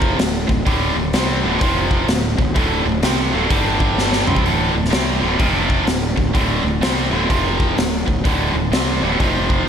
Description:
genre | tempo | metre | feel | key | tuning
blues rock power trio and southern rock | 127 BPM | 4/4 | swing 63% on 8ths | D minor | A4 = 441 Hz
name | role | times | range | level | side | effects
tight distorted guitar | riff | 0.0-9.7 s | D2 to C4 | -19 LUFS | right 1 dB | distortion, slapback echo
fuzz fingered electric bass | bass | 0.0-9.6 s | D1 to C2 | -23 LUFS | equal | overdrive
raw garage drum kit | drums | 0.0-9.6 s | hi-hat, kick drum, snare drum, toms | -19 LUFS | equal | none
room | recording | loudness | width
moderate recital hall reverb, RT60 1.4 s, studio reverb | big arena sound | -15 LUFS | side -8 dB against mid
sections
0.0-9.7 A section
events
drum fill 4.0-4.5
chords
0.2 D5; 1.6 F5; 2.1 D5; 3.5 G5; 4.2 D5; 5.4 F5; 5.9 D5; 7.3 F5; 7.8 D5; 9.2 F5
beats
0.19 | 0.66 1.14 1.61 2.08 | 2.56 3.03 3.50 3.98 | 4.45 4.92 5.40 5.87 | 6.35 6.82 7.30 7.77 | 8.24 8.72 9.20 9.67

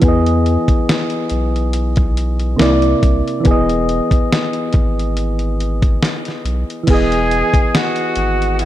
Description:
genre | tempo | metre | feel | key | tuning
lo-fi hip hop | 70 BPM | 4/4 | swing 55% on 16ths | E major | A4 = 439 Hz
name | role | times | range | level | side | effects
soft electric-piano-like synth keys | accompaniment | 0.0-8.7 s | C3 to D#5 | -18 LUFS | equal | chorus, low-pass filter
saturated sub bass | bass | 0.0-8.7 s | E1 to E2 | -18 LUFS | equal | none
dusty soul sampler-style drum kit | drums | 0.0-8.7 s | crash cymbal, hi-hat, kick drum, snare drum | -16 LUFS | equal | none
breathy bright jazz flute | melody | 6.9-8.7 s | E4 to G#4 | -17 LUFS | right 1 dB | low-pass filter
room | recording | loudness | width
moderate plate reverb, RT60 2.1 s | dreamy mix soaked in reverb | -13 LUFS | side -13 dB against mid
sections
0.0-6.9 A section; 6.9-8.7 A section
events
none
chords
0.0 Emaj7; 2.6 C9; 3.5 Emaj7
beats
| 0.02 0.88 1.74 2.59 | 3.45 4.31 5.16 6.02 | 6.88 7.74 8.59

